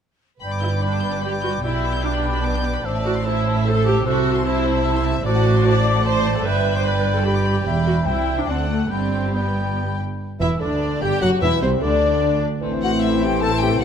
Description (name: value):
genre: quick classical-period movement for symphony orchestra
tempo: 149 BPM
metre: 3/4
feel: rubato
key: G major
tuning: A4 = 441 Hz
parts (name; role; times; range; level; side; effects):
- rich studio violin section; melody; 0.4-13.8 s; C5 to G6; -30 LUFS; left 6 dB; none
- clear oboe; second line; 0.4-13.8 s; C5 to G5; -30 LUFS; right 1 dB; none
- mellow hollow large flute ensemble; second line; 0.4-13.8 s; C5 to B5; -29 LUFS; left 4 dB; none
- rich studio violin section; second line; 0.4-13.8 s; A3 to E5; -31 LUFS; left 4 dB; none
- warm clarinet; second line; 0.4-13.8 s; C4 to E5; -29 LUFS; left 2 dB; none
- rich studio cello section; bass; 0.4-13.8 s; C2 to C3; -24 LUFS; right 2 dB; none
- rich studio double bass section; bass; 0.4-13.8 s; E1 to D2; -24 LUFS; right 3 dB; none
- rich studio viola section; accompaniment; 0.6-13.8 s; A3 to D5; -24 LUFS; right 1 dB; none
- mellow bassoon; accompaniment; 10.4-13.8 s; C3 to G3; -27 LUFS; equal; none
- dark French horn section; sustained chords; 10.4-13.8 s; C3 to E4; -25 LUFS; left 6 dB; none
room: moderate concert hall reverb, RT60 1.7 s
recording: none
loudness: -18 LUFS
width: side -8 dB against mid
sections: 0.4-10.2 A section; 10.2-13.8 A section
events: none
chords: 0.4 G; 1.6 G/B; 2.9 Am; 4.1 Am/C; 5.3 D7/A; 6.5 G; 7.7 Em; 8.1 C; 8.5 D7; 8.9 G; 10.2 G5; 11.4 Cadd9/E; 12.6 Am